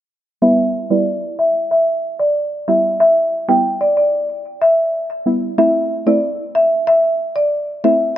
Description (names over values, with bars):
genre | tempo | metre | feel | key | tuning
dancehall | 93 BPM | 4/4 | straight | E minor | A4 = 440 Hz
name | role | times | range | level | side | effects
marimba with medium mallets | melody | 0.4-7.9 s | D5 to G5 | -15 LUFS | equal | low-pass filter
deep mellow chord stab | accompaniment | 0.4-8.1 s | G3 to E4 | -18 LUFS | right 1 dB | chorus, low-pass filter
room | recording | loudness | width
light reverb, studio ambience | none | -14 LUFS | side -12 dB against mid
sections
0.4-8.2 A section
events
filter sweep 0.4-8.2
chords
0.4 Em; 5.6 Am